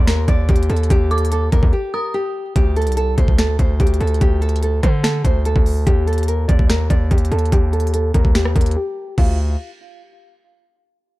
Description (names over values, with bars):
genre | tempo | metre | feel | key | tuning
hip hop, trap | 145 BPM | 4/4 | half-time | unclear | A4 = 439 Hz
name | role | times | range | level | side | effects
nylon-string guitar | melody | 0.0-9.4 s | F4 to D5 | -23 LUFS | equal | low-pass filter, ping-pong delay
distorted 808-style bass | bass | 0.0-9.6 s | C2 to D3 | -18 LUFS | equal | distortion
trap drum kit | drums | 0.1-9.3 s | crash cymbal, finger snaps, hi-hat, kick drum, rim click, snare drum | -17 LUFS | equal | overdrive
dark detuned synth bell | second line | 1.1-2.1 s | D6 to Eb6 | -28 LUFS | right 2 dB | chorus, ping-pong delay
room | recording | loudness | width
little or no reverb | dark, warm production | -15 LUFS | side -18 dB against mid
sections
0.0-2.6 A section; 2.6-9.2 B section; 9.2-10.8 C section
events
break 1.7-2.6, 8.8-9.2; filter sweep on nylon-string guitar 2.6-9.2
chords
0.0 Eb; 2.6 D5; 5.9 Eb; 9.2 N.C.